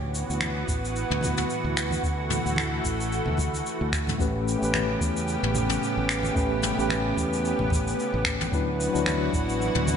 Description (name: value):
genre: sunset chillout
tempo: 111 BPM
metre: 4/4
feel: swing 57% on 16ths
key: D major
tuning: A4 = 440 Hz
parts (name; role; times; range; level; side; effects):
- lush unison pad; sustained chords; 0.0-10.0 s; C#3 to G4; -29 LUFS; right 1 dB; chorus
- fretless electric bass; bass; 0.0-10.0 s; A1 to E2; -30 LUFS; equal; tube saturation
- jazz brush drum kit; drums; 0.1-10.0 s; finger snaps, shaker, toms; -30 LUFS; equal; none
- congas; percussion; 0.4-10.0 s; none; -35 LUFS; right 1 dB; none
- electronic kick drum; drums; 0.7-9.5 s; none; -29 LUFS; equal; overdrive
- mellow tine electric piano; accompaniment; 4.2-10.0 s; F#3 to B4; -28 LUFS; moving between left 6 dB and right 2 dB; medium stereo tremolo, auto-pan, tape echo, slapback echo
room: moderate scoring stage reverb, RT60 1.9 s, studio ambience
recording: big arena sound, nothing above 10.8 kHz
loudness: -23 LUFS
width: side -7 dB against mid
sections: 0.0-10.0 A section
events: none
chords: 0.0 D69; 4.2 A9; 8.5 D69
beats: 0.41 0.95 1.50 | 2.04 2.58 3.12 3.66 | 4.20 4.74 5.28 5.82 | 6.36 6.90 7.44 7.98 | 8.52 9.06 9.60